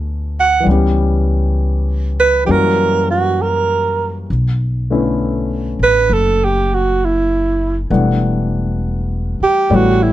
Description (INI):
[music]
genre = jazz ballad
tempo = 66 BPM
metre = 4/4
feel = swing 67% on 8ths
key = unclear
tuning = A4 = 440 Hz
[part]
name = warm grand piano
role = accompaniment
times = 0.0-10.1 s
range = D3 to F#5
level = -19 LUFS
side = left 3 dB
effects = none
[part]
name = upright bass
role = bass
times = 0.0-10.1 s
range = E1 to F#2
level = -17 LUFS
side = equal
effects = none
[part]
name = breathy alto saxophone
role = melody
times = 0.4-10.1 s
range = E4 to F#5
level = -14 LUFS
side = right 4 dB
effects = none
[sound]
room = little or no reverb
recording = close, detailed microphones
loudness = -13 LUFS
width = side -14 dB against mid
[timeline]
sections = 0.0-10.1 A section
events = none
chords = 0.0 Gmaj9#11; 0.7 C#m7b5; 2.5 F#7b9; 4.3 Bm11; 7.9 Em11